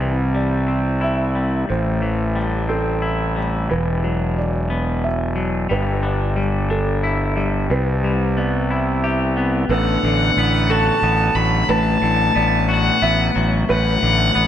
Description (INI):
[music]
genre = post-rock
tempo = 60 BPM (dotted quarters)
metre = 6/8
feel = straight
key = unclear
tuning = A4 = 441 Hz
[part]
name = felt-muted upright piano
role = arpeggios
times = 0.0-14.4 s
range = A4 to E5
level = -27 LUFS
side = right 2 dB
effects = slapback echo
[part]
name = twangy electric guitar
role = arpeggios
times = 0.0-14.5 s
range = A2 to G4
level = -22 LUFS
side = left 3 dB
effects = slapback echo
[part]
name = fuzz fingered electric bass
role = bass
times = 0.0-14.5 s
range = E1 to C2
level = -20 LUFS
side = equal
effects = overdrive
[part]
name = dark violin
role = melody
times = 9.7-14.5 s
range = F#5 to B5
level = -19 LUFS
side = left 1 dB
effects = slapback echo
[part]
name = pedal steel guitar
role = sustained chords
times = 9.7-14.5 s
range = D3 to B4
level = -28 LUFS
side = right 2 dB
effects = none
[sound]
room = moderate lush hall reverb, RT60 2.1 s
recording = big arena sound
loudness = -16 LUFS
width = side -10 dB against mid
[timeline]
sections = 0.0-9.7 A section; 9.7-14.5 B section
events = none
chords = 0.0 Cmaj7; 1.7 Am7; 3.7 Esus2; 5.7 G6; 7.7 Cmaj7; 9.7 Bm7/A